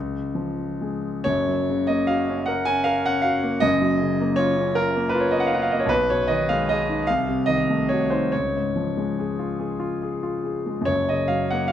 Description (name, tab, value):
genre	classical, romantic nocturne for solo piano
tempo	44-54 BPM (dotted quarters)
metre	6/8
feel	rubato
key	F# major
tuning	A4 = 441 Hz
part	warm concert grand piano	solo	0.0-11.7 s	F#1 to G#5	-20 LUFS	equal	none
room	moderate recital hall reverb, RT60 1.5 s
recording	close, detailed microphones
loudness	-20 LUFS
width	side -10 dB against mid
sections	0.0-1.3 A section; 1.3-11.7 B section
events	none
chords	0.0 C#; 1.3 F#; 3.6 A#m/F#; 5.9 G#m/B; 7.1 Cdim7; 8.3 C#; 10.9 F#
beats	| 1.26 2.50 | 3.64 4.77 | 5.90 7.07 | 8.31 9.61 | 10.90